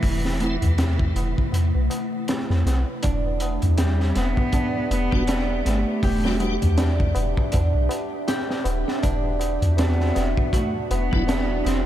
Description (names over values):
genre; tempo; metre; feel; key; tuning
trip hop; 80 BPM; 4/4; swing 58% on 16ths; E minor; A4 = 441 Hz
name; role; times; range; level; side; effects
warm cello; melody; 0.0-11.9 s; E3 to C4; -29 LUFS; equal; vintage 12-bit sampler grit, tape echo
warbly tape-like pad; sustained chords; 0.0-11.9 s; C3 to E5; -30 LUFS; equal; chorus, built-in reverb, vintage 12-bit sampler grit
soft 808-style bass; bass; 0.0-11.8 s; D1 to E2; -22 LUFS; equal; none
crunchy breakbeat drum kit; drums; 0.0-11.9 s; hi-hat, kick drum, snare drum; -26 LUFS; equal; none
tabla; percussion; 0.0-11.8 s; none; -34 LUFS; left 2 dB; none
tonewheel organ; accompaniment; 0.4-0.6, 5.1-6.6, 11.1-11.2 s; F#3 to F#4; -33 LUFS; equal; chorus vibrato, slow rotary speaker, harmonic tremolo, tape echo
flamenco guitar; arpeggios; 3.0-11.9 s; D4 to G4; -30 LUFS; right 3 dB; vintage 12-bit sampler grit, tape echo
room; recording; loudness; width
light reverb, small room reverb; none; -20 LUFS; side -12 dB against mid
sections
0.0-3.0 A section; 3.0-11.9 B section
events
kick drops out 1.5-3.0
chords
0.0 Am/E; 3.0 Em7; 9.0 Dadd9/E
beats
| 0.03 0.78 1.53 2.28 | 3.03 3.78 4.53 5.28 | 6.03 6.78 7.53 8.28 | 9.03 9.78 10.53 11.28